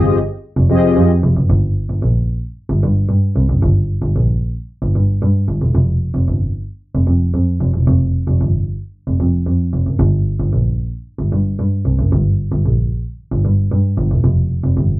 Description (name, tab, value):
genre	early-eighties boogie funk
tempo	113 BPM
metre	4/4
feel	straight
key	unclear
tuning	A4 = 440 Hz
part	mellow synth brass	accompaniment	0.0-1.1 s	C4 to Eb5	-16 LUFS	left 4 dB	chorus
part	warm double bass	bass	0.0-15.0 s	E1 to G2	-14 LUFS	equal	none
room	little or no reverb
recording	dry, close 1970s-style studio recording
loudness	-14 LUFS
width	side -19 dB against mid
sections	0.0-1.5 A section; 1.5-15.0 B section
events	none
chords	0.0 Fm9; 1.5 N.C.; 14.2 Fsus2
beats	0.44 0.97 | 1.50 2.03 2.56 3.09 | 3.62 4.15 4.68 5.22 | 5.75 6.28 6.81 7.34 | 7.87 8.40 8.93 9.46 | 9.99 10.53 11.06 11.59 | 12.12 12.65 13.18 13.71 | 14.24 14.77